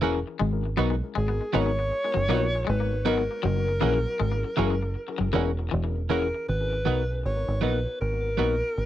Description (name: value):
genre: reggae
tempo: 79 BPM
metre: 4/4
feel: swing 61% on 16ths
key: G# minor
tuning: A4 = 442 Hz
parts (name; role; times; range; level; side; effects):
- mellow tine electric piano; accompaniment; 0.0-8.5 s; B3 to A#4; -31 LUFS; left 7 dB; tape echo
- twelve-string electric guitar; stabs; 0.0-8.6 s; E3 to F#4; -28 LUFS; right 8 dB; tremolo
- deep dub fingered electric bass; bass; 0.0-8.9 s; E1 to B1; -27 LUFS; right 1 dB; none
- twangy electric guitar; riff; 0.4-5.9 s; E3 to B3; -33 LUFS; left 8 dB; wide subtle chorus, tape echo
- warm alto saxophone; melody; 1.2-8.9 s; G#4 to C#5; -29 LUFS; equal; tape echo
room: light reverb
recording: home recording on cassette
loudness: -24 LUFS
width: side -12 dB against mid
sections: 0.0-6.5 A section; 6.5-8.9 B section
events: none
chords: 0.4 G#m7; 3.4 F#7; 6.5 G#m7